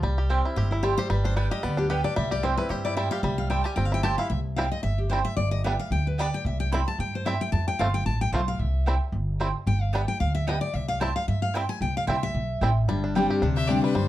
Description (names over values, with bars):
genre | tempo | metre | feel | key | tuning
bluegrass | 224 BPM | 4/4 | swing 56% on 8ths | C major | A4 = 442 Hz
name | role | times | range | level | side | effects
bluegrass banjo | melody | 0.0-14.1 s | G3 to G4 | -31 LUFS | equal | plate reverb
upright bass | bass | 0.0-14.1 s | G1 to G2 | -26 LUFS | equal | none
mandolin | stabs | 0.3-13.8 s | B3 to A5 | -31 LUFS | right 5 dB | none
picked steel-string acoustic guitar | accompaniment | 0.6-14.1 s | G2 to B5 | -28 LUFS | left 3 dB | none
clear fiddle | melody | 13.6-14.1 s | B4 to E5 | -30 LUFS | left 4 dB | plate reverb
room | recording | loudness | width
light reverb | dark, warm production | -23 LUFS | side -14 dB against mid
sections
0.0-4.3 A section; 4.3-12.9 A section; 12.9-14.1 A section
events
steel-string acoustic guitar solo 0.0-12.9; fiddle solo 12.9-14.1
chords
0.0 C; 1.1 G; 2.2 C; 5.4 G; 6.5 C; 7.5 F; 8.6 C; 9.7 G; 10.7 C; 12.9 Gsus4